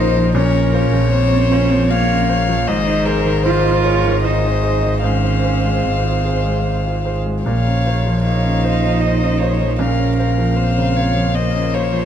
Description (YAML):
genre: neoclassical piano and strings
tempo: 77 BPM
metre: 3/4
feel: rubato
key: Bb minor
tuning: A4 = 440 Hz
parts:
  - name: warm violin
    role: melody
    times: 0.0-12.1 s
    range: Bb4 to F5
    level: -21 LUFS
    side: left 6 dB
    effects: none
  - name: dark cello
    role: second line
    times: 0.0-12.1 s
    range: Bb3 to F4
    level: -22 LUFS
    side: right 6 dB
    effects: none
  - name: clear grand piano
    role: accompaniment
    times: 0.0-12.1 s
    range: Ab2 to C5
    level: -21 LUFS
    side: equal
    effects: none
  - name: warm viola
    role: accompaniment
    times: 0.0-12.1 s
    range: Bb4 to Db5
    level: -26 LUFS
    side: right 5 dB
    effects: none
  - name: hand-pumped harmonium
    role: sustained chords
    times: 0.0-12.1 s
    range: Db3 to Eb5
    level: -30 LUFS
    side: left 2 dB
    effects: none
  - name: rich double bass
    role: bass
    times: 0.0-12.1 s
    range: Ab1 to Bb1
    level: -18 LUFS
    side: equal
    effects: none
room: moderate concert hall reverb, RT60 2.3 s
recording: dark, warm production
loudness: -14 LUFS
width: side -9 dB against mid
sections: 0.0-12.1 A section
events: none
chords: 0.0 Bbmadd9; 2.7 Ab; 5.0 Fm/Ab; 7.4 Bbmadd9